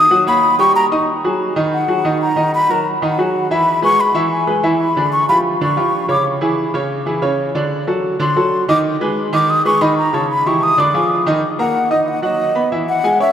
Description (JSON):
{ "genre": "jazz", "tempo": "186 BPM", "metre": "4/4", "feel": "straight", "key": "G# minor", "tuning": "A4 = 440 Hz", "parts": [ { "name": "breathy mellow concert flute", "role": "melody", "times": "0.0-13.3 s", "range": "Eb5 to D#6", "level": "-15 LUFS", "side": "left 1 dB", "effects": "none" }, { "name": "clear baby grand piano", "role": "accompaniment", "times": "0.0-13.3 s", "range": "C#3 to Eb6", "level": "-17 LUFS", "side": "right 1 dB", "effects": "none" } ], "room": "wet cathedral reverb, RT60 5.2 s", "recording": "in a vast, echoing space", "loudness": "-13 LUFS", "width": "side -9 dB against mid", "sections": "0.0-1.1 A section; 1.1-11.4 A section; 11.4-13.3 A section", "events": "flute solo 0.0-11.4, 11.4-13.3", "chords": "0.4 Eb7; 1.1 G#5; 2.4 D#m; 3.0 G#5; 3.7 E; 5.0 G5; 6.3 C#m; 7.5 D7; 8.8 B6/D#; 10.1 C#m9b5; 10.8 Ddim; 11.4 Ebm; 12.7 Dbmadd11", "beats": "0.11 0.43 0.76 | 1.08 1.40 1.73 2.05 | 2.37 2.70 3.02 3.35 | 3.67 3.99 4.32 4.64 | 4.96 5.29 5.61 5.93 | 6.26 6.58 6.90 7.23 | 7.55 7.87 8.20 8.52 | 8.84 9.16 9.49 9.81 | 10.13 10.46 10.78 11.10 | 11.43 11.75 12.07 12.40 | 12.72 13.04" }